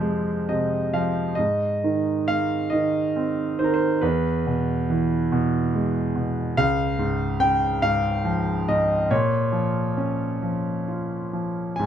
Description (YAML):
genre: classical, lyrical solo piano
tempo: 44-48 BPM (dotted quarters)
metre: 6/8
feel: rubato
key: unclear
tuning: A4 = 438 Hz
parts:
  - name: clear concert grand piano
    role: solo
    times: 0.0-11.9 s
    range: Db2 to Ab5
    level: -21 LUFS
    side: right 1 dB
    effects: none
room: light reverb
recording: none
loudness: -21 LUFS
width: side -9 dB against mid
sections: 0.0-1.4 A section; 1.4-11.9 B section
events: grand piano fill 0.0-1.4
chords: 0.0 Fm; 1.4 Ab; 4.0 E; 6.6 Db; 9.1 Bbm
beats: 0.01 | 1.37 2.71 | 4.01 5.31 | 6.57 7.83 | 9.10 10.42 | 11.79